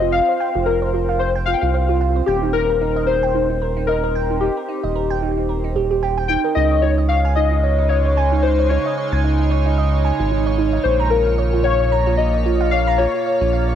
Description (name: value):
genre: IDM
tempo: 112 BPM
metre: 4/4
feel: swing 56% on 16ths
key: unclear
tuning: A4 = 440 Hz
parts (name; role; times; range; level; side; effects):
- warbly lo-fi synth keys; melody; 0.0-13.7 s; G4 to G5; -20 LUFS; left 7 dB; chorus, cassette tape, analog delay
- harp-like synth pluck; arpeggios; 0.0-13.7 s; Eb4 to Bb5; -22 LUFS; right 11 dB; chorus, cassette tape, analog delay
- round analog bass; bass; 0.0-13.8 s; Eb1 to Db2; -20 LUFS; equal; none
- bubbling stepped-filter texture; texture; 0.0-6.6 s; C4 to C5; -32 LUFS; equal; chorus, built-in reverb, cassette tape
- icy glass pad; sustained chords; 7.5-13.8 s; Bb2 to Ab5; -25 LUFS; equal; chorus, built-in reverb, vintage 12-bit sampler grit, cassette tape
room: moderate spring reverb, RT60 1.6 s, digital ambience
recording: home recording on cassette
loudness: -16 LUFS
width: side -9 dB against mid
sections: 0.0-6.6 A section; 6.6-13.8 B section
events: none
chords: 0.0 F5; 2.3 Eb; 6.6 Dbsus2; 10.8 Bbm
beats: | 0.14 0.67 1.21 1.74 | 2.28 2.81 3.35 3.88 | 4.42 4.96 5.49 6.03 | 6.56 7.10 7.63 8.17 | 8.71 9.24 9.78 10.31 | 10.85 11.38 11.92 12.46 | 12.99 13.53